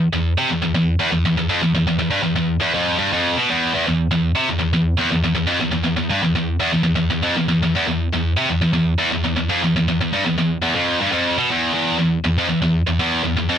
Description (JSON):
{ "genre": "metal", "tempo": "120 BPM", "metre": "4/4", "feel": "straight", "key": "E phrygian", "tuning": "A4 = 440 Hz", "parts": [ { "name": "heavy high-gain guitar", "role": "solo", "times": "0.0-13.6 s", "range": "E2 to C3", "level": "-16 LUFS", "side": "equal", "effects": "distortion" } ], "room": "little or no reverb", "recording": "dry, close 1970s-style studio recording", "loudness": "-16 LUFS", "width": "side -9 dB against mid", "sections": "0.0-11.7 A section; 11.7-13.6 B section", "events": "none", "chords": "none" }